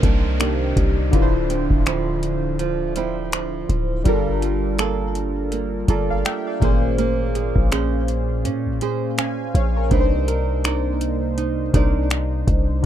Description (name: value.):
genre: contemporary R&B.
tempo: 82 BPM.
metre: 4/4.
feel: swing 58% on 16ths.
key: unclear.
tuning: A4 = 436 Hz.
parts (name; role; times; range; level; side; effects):
warm analog keys; accompaniment; 0.0-12.9 s; Bb2 to Ab5; -24 LUFS; left 1 dB; chorus, phaser.
flamenco guitar; arpeggios; 0.0-12.9 s; C3 to D5; -26 LUFS; right 10 dB; ping-pong delay.
warm 808-style bass; bass; 0.0-12.8 s; D1 to Bb2; -22 LUFS; equal; none.
booming analog drum machine; drums; 0.0-12.7 s; finger snaps, hi-hat, kick drum; -20 LUFS; equal; none.
downlifter; sound effects; 0.0-4.1 s; none; -37 LUFS; equal; none.
room: little or no reverb.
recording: dark, warm production.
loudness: -18 LUFS.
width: side -11 dB against mid.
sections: 0.0-12.9 A section.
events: none.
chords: 0.0 Cm9; 1.1 Dm9; 4.1 Gm9; 6.6 Bbm9; 9.9 Cm9.